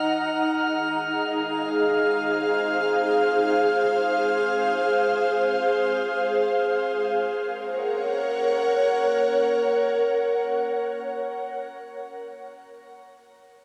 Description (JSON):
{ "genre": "ambient", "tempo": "free time", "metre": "none", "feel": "none", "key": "Gb lydian", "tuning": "A4 = 442 Hz", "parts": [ { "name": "ethereal airy pad", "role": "sustained chords", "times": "0.0-11.3 s", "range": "Eb4 to Bb5", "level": "-24 LUFS", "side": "equal", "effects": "ensemble chorus, built-in reverb, shimmer reverb" }, { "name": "drifting glass-harmonics texture", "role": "texture", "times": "0.0-7.2 s", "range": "F6", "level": "-32 LUFS", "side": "equal", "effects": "chorus, built-in reverb, shimmer reverb" } ], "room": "wet lush hall reverb, RT60 2.7 s", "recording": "none", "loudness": "-23 LUFS", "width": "mono", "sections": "0.0-7.1 A section; 7.1-10.5 B section", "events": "none", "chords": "0.4 Fm; 7.1 Gb" }